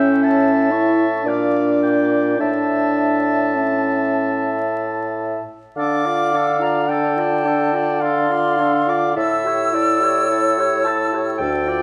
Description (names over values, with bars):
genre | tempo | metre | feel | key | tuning
classical, slow romantic movement for wind quintet | 50-60 BPM | 3/4 | rubato | D minor | A4 = 440 Hz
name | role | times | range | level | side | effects
warm oboe | second line | 0.0-11.8 s | A4 to A5 | -28 LUFS | equal | none
clear clarinet | accompaniment | 0.0-11.8 s | C#5 to A5 | -25 LUFS | equal | none
warm French horn | accompaniment | 0.0-11.8 s | C#4 to G4 | -24 LUFS | equal | none
warm bassoon | bass | 0.0-11.8 s | D2 to D3 | -24 LUFS | equal | none
silver concert flute | melody | 0.2-11.8 s | A5 to E6 | -27 LUFS | equal | none
room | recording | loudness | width
moderate scoring stage reverb, RT60 1.7 s | dark, warm production, vinyl crackle | -18 LUFS | mono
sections
0.0-5.8 A section; 5.8-11.8 B section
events
none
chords
0.0 A; 1.3 Bb; 2.4 A; 5.8 Dm; 9.2 A7